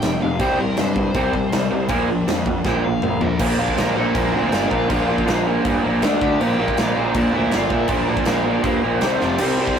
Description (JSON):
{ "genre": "punk rock", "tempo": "160 BPM", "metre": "4/4", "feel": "straight", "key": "unclear", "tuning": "A4 = 439 Hz", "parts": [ { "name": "biting overdriven guitar", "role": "melody", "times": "0.0-9.8 s", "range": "A3 to G5", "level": "-28 LUFS", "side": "equal", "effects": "none" }, { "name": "raw garage guitar", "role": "riff", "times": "0.0-9.8 s", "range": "F2 to D4", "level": "-19 LUFS", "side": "equal", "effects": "overdrive" }, { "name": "fuzz picked electric bass", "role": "bass", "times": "0.0-9.7 s", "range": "F1 to G2", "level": "-25 LUFS", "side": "equal", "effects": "overdrive" }, { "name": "big rock drum kit", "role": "drums", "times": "0.0-9.8 s", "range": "crash cymbal, kick drum, snare drum, toms", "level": "-24 LUFS", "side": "equal", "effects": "none" } ], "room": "moderate studio reverb, RT60 0.5 s", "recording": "rough rehearsal-room recording, warm saturation", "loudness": "-17 LUFS", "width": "side -7 dB against mid", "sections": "0.0-3.4 A section; 3.4-9.8 B section", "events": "overdriven electric guitar solo 0.0-3.4; drum fill 2.7-3.4, 9.2", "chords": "0.4 C5; 1.9 Bb5; 3.4 Bb; 6.0 D5; 6.4 Bb; 9.0 C5; 9.2 F5" }